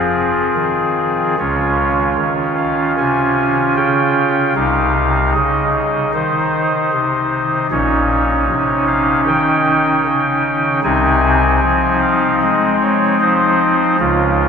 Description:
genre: classical, chorale-style piece for pipe organ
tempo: 76 BPM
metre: 4/4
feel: rubato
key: Ab major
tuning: A4 = 442 Hz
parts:
  - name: pipe organ, soft reed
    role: solo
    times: 0.0-14.5 s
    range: Bb1 to Ab5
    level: -13 LUFS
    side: equal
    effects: none
room: wet cathedral reverb, RT60 4.1 s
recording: minimal, uncompressed stereo recording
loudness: -13 LUFS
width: side -6 dB against mid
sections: 0.0-14.5 A section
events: none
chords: 0.0 Fm; 1.4 Db; 4.6 Cmadd11; 7.7 Eb7/Bb; 10.8 Ab/C

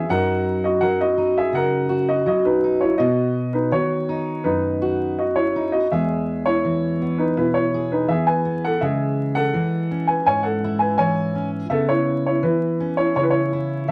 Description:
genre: acoustic folk-pop ballad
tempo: 83 BPM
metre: 4/4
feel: straight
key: E major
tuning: A4 = 443 Hz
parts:
  - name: warm upright piano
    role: melody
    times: 0.0-13.9 s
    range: D#4 to G#5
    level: -23 LUFS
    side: equal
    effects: none
  - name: fingerpicked steel-string acoustic guitar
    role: accompaniment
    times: 0.0-13.9 s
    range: E2 to G#4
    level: -24 LUFS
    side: equal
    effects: none
room: moderate studio reverb, RT60 0.5 s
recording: vinyl crackle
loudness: -21 LUFS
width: mono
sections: 0.0-13.9 A section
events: none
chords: 0.1 F#6; 3.0 B; 5.9 E; 8.8 C#m; 11.7 Aadd9/C# (rootless)

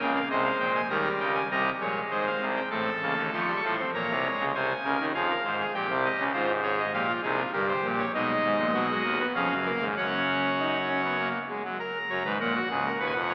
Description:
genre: classical, baroque-style 4-part fugue for pipe organ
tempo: 99 BPM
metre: 3/4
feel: straight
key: F# major from 8.1 s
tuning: A4 = 440 Hz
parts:
  - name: pipe organ, trumpet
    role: solo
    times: 0.0-13.3 s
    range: C#1 to Db6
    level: -24 LUFS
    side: equal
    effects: none
room: wet church reverb, RT60 2.8 s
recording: AM radio sound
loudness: -24 LUFS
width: side -31 dB against mid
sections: 0.9-11.8 A section; 11.8-13.3 B section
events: none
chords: 0.3 Ab/C; 0.9 Eb7; 2.1 Ab; 2.7 F7/A; 3.9 Bbm; 4.5 Ab/C; 5.7 Gdim/Bb; 6.3 Fm/Ab; 7.5 Gmadd11; 8.1 G#m7; 9.3 C#/E#; 10.0 F#5; 11.8 F#

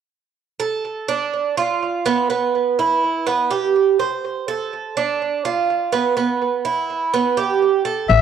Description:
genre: latin, Cuban son and guajira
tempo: 124 BPM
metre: 4/4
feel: straight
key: unclear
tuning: A4 = 438 Hz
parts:
  - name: Cuban tres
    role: arpeggios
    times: 0.6-8.1 s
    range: B3 to C5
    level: -18 LUFS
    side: right 6 dB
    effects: tape echo
  - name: growling clarinet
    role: melody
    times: 8.1-8.2 s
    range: E5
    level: -12 LUFS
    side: left 9 dB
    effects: cassette tape
  - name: upright bass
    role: bass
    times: 8.1-8.2 s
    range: A1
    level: -14 LUFS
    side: left 2 dB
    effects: none
room: moderate spring reverb, RT60 1.6 s, studio reverb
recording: home recording on cassette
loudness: -18 LUFS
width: side -8 dB against mid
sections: 0.4-8.1 A section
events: none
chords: 0.4 D5; 1.3 Bdim; 2.3 E5; 3.3 G; 4.2 Am; 5.2 Bdim; 6.2 E5; 7.1 G

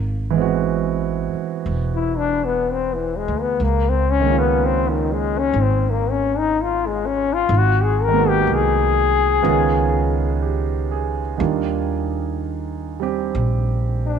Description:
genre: jazz ballad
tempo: 62 BPM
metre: 4/4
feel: swing 67% on 8ths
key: unclear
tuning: A4 = 440 Hz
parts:
  - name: upright bass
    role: bass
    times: 0.0-14.2 s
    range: E1 to Eb2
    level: -22 LUFS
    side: right 1 dB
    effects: none
  - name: warm concert grand piano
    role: accompaniment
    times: 0.3-14.2 s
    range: Eb3 to Ab4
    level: -23 LUFS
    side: right 12 dB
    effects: none
  - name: bright trombone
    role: melody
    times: 1.9-14.2 s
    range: Eb3 to Bb4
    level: -19 LUFS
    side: left 8 dB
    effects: none
room: moderate spring reverb, RT60 2.1 s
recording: 1960s-style stereo with parts hard left and right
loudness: -17 LUFS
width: side -7 dB against mid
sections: 0.0-14.2 A section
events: trombone solo 0.0-14.2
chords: 0.0 Ab7alt; 3.6 Db69; 7.5 Abm7; 9.4 Db9; 11.4 Ebmaj9

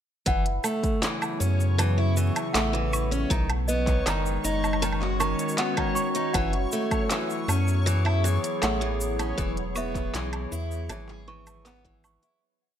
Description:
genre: folktronica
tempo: 79 BPM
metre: 4/4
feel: straight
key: F# dorian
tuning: A4 = 440 Hz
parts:
  - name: small celesta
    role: second line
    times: 0.3-12.4 s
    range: D#5 to C#6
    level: -34 LUFS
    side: equal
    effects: ping-pong delay
  - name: warbly tape-like pad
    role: sustained chords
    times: 1.0-12.4 s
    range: C#3 to G#4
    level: -32 LUFS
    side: left 2 dB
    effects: chorus, built-in reverb, phaser
  - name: picked acoustic archtop guitar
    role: arpeggios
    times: 0.3-12.4 s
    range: D#3 to G#4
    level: -30 LUFS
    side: right 1 dB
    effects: vintage 12-bit sampler grit, tape echo
  - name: warm sub bass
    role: bass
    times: 0.3-12.2 s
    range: E1 to F#2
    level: -27 LUFS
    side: equal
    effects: none
  - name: electronic kick drum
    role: drums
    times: 0.3-12.0 s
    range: none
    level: -28 LUFS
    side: equal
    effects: overdrive
  - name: organic electronic drum kit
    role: drums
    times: 0.3-12.4 s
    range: handclaps, hi-hat, shaker, woodblock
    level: -31 LUFS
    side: right 1 dB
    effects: overdrive
  - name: backwards swelling texture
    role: texture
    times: 1.1-12.4 s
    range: C#5 to C#6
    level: -36 LUFS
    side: left 1 dB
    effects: built-in reverb
room: little or no reverb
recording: none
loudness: -23 LUFS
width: side -10 dB against mid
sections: 0.3-12.4 groove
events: fade-out 8.4-12.4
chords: 0.3 F#m7; 3.3 B; 6.3 F#m7; 9.4 E

